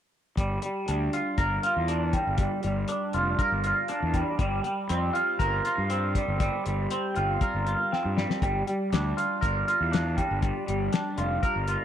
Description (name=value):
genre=psychedelic rock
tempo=119 BPM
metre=4/4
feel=straight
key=G dorian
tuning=A4 = 439 Hz
part: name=twangy electric guitar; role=riff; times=0.4-11.8 s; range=G3 to Bb4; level=-27 LUFS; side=right 1 dB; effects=phaser, double-tracked left and right
part: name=fuzz fingered electric bass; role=bass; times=0.4-11.8 s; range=F1 to G2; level=-30 LUFS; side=equal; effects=overdrive
part: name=cloth-damped thuddy drum kit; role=drums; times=0.4-11.8 s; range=hi-hat, kick drum, snare drum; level=-30 LUFS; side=left 2 dB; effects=none
room=light reverb, studio reverb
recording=1960s-style stereo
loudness=-25 LUFS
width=side -10 dB against mid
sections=0.4-11.8 A section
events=drum fill 7.9-8.4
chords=0.4 Gm7; 4.4 Bbsus2/G; 8.4 Gm7